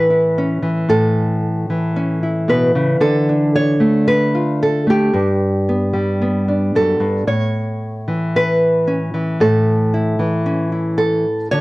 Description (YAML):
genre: folk, solo fingerstyle acoustic guitar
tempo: 113 BPM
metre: 4/4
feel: straight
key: A mixolydian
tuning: A4 = 440 Hz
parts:
  - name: nylon-string guitar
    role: solo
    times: 0.0-11.6 s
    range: F#2 to C#5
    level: -14 LUFS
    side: equal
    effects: none
room: light reverb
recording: worn, warbling old tape, cassette tape, warbly pitch drift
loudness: -14 LUFS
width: side -20 dB against mid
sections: 0.0-11.6 A section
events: none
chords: 0.0 Aadd9; 3.0 Dmadd9; 5.1 G; 7.3 Aadd9